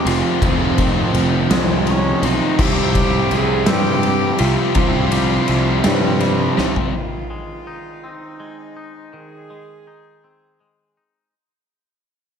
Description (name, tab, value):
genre	post-rock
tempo	55 BPM (dotted quarters)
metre	6/8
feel	straight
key	unclear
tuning	A4 = 440 Hz
part	rich cello	melody	0.0-11.0 s	C4 to Ab4	-24 LUFS	equal	slapback echo
part	twangy electric guitar	arpeggios	0.0-11.3 s	F2 to Eb4	-28 LUFS	left 3 dB	slapback echo
part	biting overdriven guitar	riff	0.0-6.9 s	F2 to C4	-22 LUFS	right 10 dB	none
part	distorted electric guitar	riff	0.0-6.9 s	C3 to Ab4	-23 LUFS	left 10 dB	overdrive
part	fuzz picked electric bass	bass	0.1-6.7 s	F1 to G2	-21 LUFS	equal	overdrive
part	oversized low-tuned drum kit	drums	0.1-6.9 s	crash cymbal, kick drum, ride cymbal, snare drum, toms	-20 LUFS	equal	none
room	light reverb, studio ambience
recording	none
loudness	-14 LUFS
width	side -7 dB against mid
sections	0.0-6.9 A section; 6.9-11.3 B section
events	drum fill 6.6-6.9; fade-out 6.9-11.3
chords	0.0 Fm7; 2.6 Csus4; 6.9 Ab/Eb